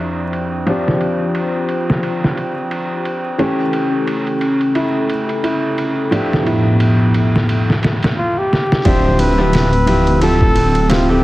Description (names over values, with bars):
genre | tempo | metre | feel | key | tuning
trip hop | 88 BPM | 4/4 | swing 57% on 16ths | D dorian | A4 = 436 Hz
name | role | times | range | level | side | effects
bright upright piano | accompaniment | 0.0-11.2 s | A2 to A4 | -20 LUFS | left 1 dB | harmonic tremolo, vintage 12-bit sampler grit, low-pass filter, tape echo
dark analog pad | sustained chords | 0.0-11.2 s | A2 to E6 | -19 LUFS | equal | chorus
trip hop sampler-style drum kit | drums | 0.3-11.1 s | kick drum, ride cymbal, snare drum | -20 LUFS | equal | low-pass filter on cymbals, low-pass filter on kick, low-pass filter on snare
felt-muted upright piano | arpeggios | 3.4-11.2 s | C#4 to F4 | -23 LUFS | right 1 dB | tape echo
trumpet with bucket mute | melody | 8.2-11.2 s | F4 to C5 | -18 LUFS | equal | none
dark detuned saw bass | bass | 8.9-11.2 s | D1 | -16 LUFS | equal | none
room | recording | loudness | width
light reverb, small room ambience | heavily compressed radio sound, multiband compression, vinyl crackle | -13 LUFS | side -17 dB against mid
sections
0.0-8.9 A section; 8.9-11.2 B section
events
filter sweep on upright piano 0.0-8.9; filter sweep on analog synth pad 0.0-8.9; drum fill 8.5-8.9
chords
0.0 Dm11; 0.7 G7sus4; 3.4 A7; 6.1 Fmaj9#11/A; 8.9 Dm11